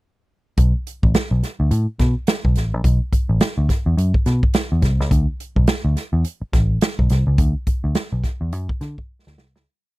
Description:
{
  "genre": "funk",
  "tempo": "106 BPM",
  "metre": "4/4",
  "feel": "swing 60% on 16ths",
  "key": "unclear",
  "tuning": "A4 = 440 Hz",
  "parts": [
    { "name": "vintage muted picked electric bass", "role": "bass", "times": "0.6-9.6 s", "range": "A1 to D3", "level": "-18 LUFS", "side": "equal", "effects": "none" },
    { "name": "swinging big-band drum kit", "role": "drums", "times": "0.6-9.7 s", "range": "hi-hat, kick drum, snare drum", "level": "-19 LUFS", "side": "equal", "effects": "none" }
  ],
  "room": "little or no reverb",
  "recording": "dry, close 1970s-style studio recording",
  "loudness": "-17 LUFS",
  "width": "side -20 dB against mid",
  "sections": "0.6-9.7 breakdown",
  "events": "fade-out 7.4-9.7; drum fill 9.1-9.7",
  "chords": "none"
}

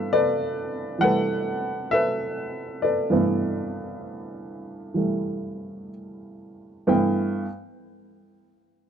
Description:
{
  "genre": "solo jazz",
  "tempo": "66 BPM",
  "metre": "4/4",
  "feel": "swing 69% on 8ths, rubato",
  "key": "G major",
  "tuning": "A4 = 445 Hz",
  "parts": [
    { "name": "warm upright piano", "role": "solo", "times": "0.0-7.5 s", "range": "G2 to G5", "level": "-23 LUFS", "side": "equal", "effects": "none" }
  ],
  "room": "studio reverb",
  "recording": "dry, close 1970s-style studio recording",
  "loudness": "-22 LUFS",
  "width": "side -8 dB against mid",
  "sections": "0.0-6.9 A section; 6.9-8.9 B section",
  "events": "none",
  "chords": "0.0 G69"
}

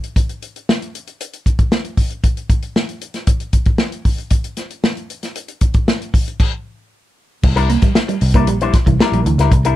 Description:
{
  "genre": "funk",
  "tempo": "115 BPM",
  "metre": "4/4",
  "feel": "straight",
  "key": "C mixolydian",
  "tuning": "A4 = 440 Hz",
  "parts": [
    { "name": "warm soul drum kit", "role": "drums", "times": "0.0-9.8 s", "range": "crash cymbal, hi-hat, kick drum, snare drum", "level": "-16 LUFS", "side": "equal", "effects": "none" },
    { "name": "electric guitar with an envelope filter", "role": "accompaniment", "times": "7.4-9.8 s", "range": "G3 to C5", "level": "-20 LUFS", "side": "left 6 dB", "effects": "none" },
    { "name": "vintage muted picked electric bass", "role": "bass", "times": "7.4-9.8 s", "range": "Bb1 to D2", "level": "-15 LUFS", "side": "equal", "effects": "none" },
    { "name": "clean electric guitar", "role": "riff", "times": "7.6-9.7 s", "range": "E3 to Bb3", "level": "-21 LUFS", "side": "right 6 dB", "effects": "analog chorus" }
  ],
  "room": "little or no reverb",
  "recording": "none",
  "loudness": "-14 LUFS",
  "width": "side -14 dB against mid",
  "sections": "0.0-7.4 A section; 7.4-9.8 B section",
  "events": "stop 6.4-7.4",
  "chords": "0.0 N.C.; 7.4 C9"
}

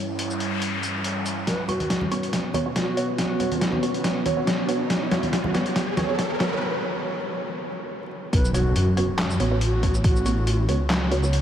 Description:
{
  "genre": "deep dubstep",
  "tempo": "140 BPM",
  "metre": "4/4",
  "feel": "swing 54% on 16ths, half-time",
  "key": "unclear",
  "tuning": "A4 = 440 Hz",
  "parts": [
    { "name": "deep dark ambient pad", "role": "sustained chords", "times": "0.0-6.6 s", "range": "G3 to C#5", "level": "-30 LUFS", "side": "right 1 dB", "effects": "chorus, built-in reverb" },
    { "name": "noise sweep, riser and impact", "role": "sound effects", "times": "0.0-10.0 s", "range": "none", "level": "-32 LUFS", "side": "equal", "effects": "none" },
    { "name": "trip hop sampler-style drum kit", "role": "drums", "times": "0.2-11.4 s", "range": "handclaps, hi-hat, shaker, snare drum", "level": "-27 LUFS", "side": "equal", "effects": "none" },
    { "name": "breathy reedy low ney", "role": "melody", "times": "1.5-3.8, 8.3-10.6 s", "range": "F#4 to B4", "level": "-32 LUFS", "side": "equal", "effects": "vintage 12-bit sampler grit, dub echo" },
    { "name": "electronic kick drum", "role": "drums", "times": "1.5-10.1 s", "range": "none", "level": "-25 LUFS", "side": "equal", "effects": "high-pass filter on kick, high-pass filter on room" },
    { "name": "filtered dub chord stab", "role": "stabs", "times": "1.7-11.3 s", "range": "B3 to C#5", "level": "-29 LUFS", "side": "right 2 dB", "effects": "phaser, lush chorus, dub echo" },
    { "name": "congas", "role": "percussion", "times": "1.7-6.1 s", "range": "none", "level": "-32 LUFS", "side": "left 1 dB", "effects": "dub echo" },
    { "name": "dark detuned saw bass", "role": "bass", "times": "8.3-11.4 s", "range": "A1 to F#2", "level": "-22 LUFS", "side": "equal", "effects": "none" }
  ],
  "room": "wet huge ambient reverb, RT60 7.7 s",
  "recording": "dreamy mix soaked in reverb, vinyl crackle",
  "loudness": "-21 LUFS",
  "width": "side -10 dB against mid",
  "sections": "0.0-1.5 A section; 1.5-8.3 B section; 8.3-11.4 C section",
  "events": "noise sweep 0.0-1.5; build-up 1.5-8.3; drum fill 1.5-6.6; riser 1.5-6.6; break 6.6-8.3; drop 8.3-11.4; impact 8.3-10.0",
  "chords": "0.0 C#dim; 1.5 Bsus2"
}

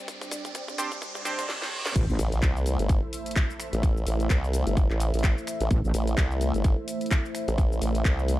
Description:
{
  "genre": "bass house",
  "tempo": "128 BPM",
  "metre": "4/4",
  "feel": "swing 57% on 16ths",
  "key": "A minor",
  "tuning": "A4 = 443 Hz",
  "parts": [
    { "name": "sweeping resonant pad", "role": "sustained chords", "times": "0.0-8.4 s", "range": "G3 to E5", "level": "-34 LUFS", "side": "equal", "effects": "chorus, sidechain pumping" },
    { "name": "riser, reverse cymbal and impact", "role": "sound effects", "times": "0.0-3.8 s", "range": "none", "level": "-35 LUFS", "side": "right 1 dB", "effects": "none" },
    { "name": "warm symphonic string section", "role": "texture", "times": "0.0-1.5 s", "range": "C4 to D5", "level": "-44 LUFS", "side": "equal", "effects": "sidechain pumping" },
    { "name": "electronic kick drum", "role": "drums", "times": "0.1-8.2 s", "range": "none", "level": "-24 LUFS", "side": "equal", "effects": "high-pass filter on kick, studio reverb, high-pass filter on room" },
    { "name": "garage drum kit", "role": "drums", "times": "0.1-8.4 s", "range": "crash cymbal, finger snaps, handclaps, hi-hat, shaker, snare drum", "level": "-34 LUFS", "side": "left 1 dB", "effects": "high-pass filter on hats, studio reverb, high-pass filter on perc, high-pass filter on snare, high-pass filter on cymbals" },
    { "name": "band-passed chord stab", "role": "stabs", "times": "0.8-1.4 s", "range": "C4 to C5", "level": "-33 LUFS", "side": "right 2 dB", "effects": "chorus, sidechain pumping, dub echo" },
    { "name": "wobble bass", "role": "bass", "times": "2.0-2.2, 5.7-5.9 s", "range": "A1", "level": "-25 LUFS", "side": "equal", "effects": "chorus, tube saturation, sidechain pumping" },
    { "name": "formant-sweep wobble bass", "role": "bass", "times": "2.2-8.4 s", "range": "G1 to C2", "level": "-26 LUFS", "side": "equal", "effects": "chorus, sidechain pumping" }
  ],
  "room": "little or no reverb",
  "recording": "dark, warm production, high-pass filter",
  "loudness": "-24 LUFS",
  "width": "side -16 dB against mid",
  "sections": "0.0-2.0 A section; 2.0-8.4 B section",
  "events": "build-up 0.0-2.0; drum fill 0.0-1.5, 1.5-2.0; riser 0.0-2.0; reverse cymbal 1.0-2.0; drop 2.0-8.4; impact 2.0-3.8",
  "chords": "0.0 Csus2; 2.0 Am"
}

